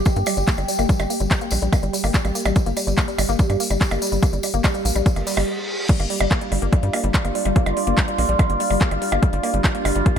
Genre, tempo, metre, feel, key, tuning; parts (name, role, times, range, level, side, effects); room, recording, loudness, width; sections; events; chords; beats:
psychedelic trance; 144 BPM; 4/4; straight; G minor; A4 = 440 Hz
overtone-sweeping drone; sustained chords; 0.0-10.2 s; F4 to G4; -27 LUFS; right 1 dB; chorus, built-in reverb, phaser, sidechain pumping
woody wave-folded pluck; riff; 0.0-10.2 s; G3 to Bb3; -26 LUFS; moving between left 5 dB and right 2 dB; chorus, auto-pan, sidechain pumping, digital delay
tight sequencer bass; bass; 0.0-10.2 s; G1 to G2; -23 LUFS; equal
electronic kick drum; drums; 0.1-10.1 s; -18 LUFS; equal
techno drum kit; drums; 0.1-10.2 s; crash cymbal, handclaps, hi-hat, percussion blips; -26 LUFS; right 1 dB
tambourine; percussion; 0.1-5.5 s; -30 LUFS; left 4 dB
reverse cymbal; sound effects; 5.2-5.9 s; -31 LUFS; right 1 dB
warbly tape-like pad; texture; 6.5-10.2 s; D4 to F5; -28 LUFS; right 2 dB; chorus, built-in reverb, sidechain pumping
digital ambience; -18 LUFS; side -8 dB against mid
0.0-5.9 A section; 5.9-10.2 B section
filter sweep on synth arpeggio sound 0.0-5.9; reverse cymbal 5.2-5.9; stop 5.5-5.9; drop 5.9-10.2
0.0 G5
0.06 0.48 | 0.89 1.31 1.73 2.14 | 2.56 2.98 3.39 3.81 | 4.23 4.64 5.06 5.48 | 5.89 6.31 6.73 7.14 | 7.56 7.98 8.39 8.81 | 9.23 9.64 10.06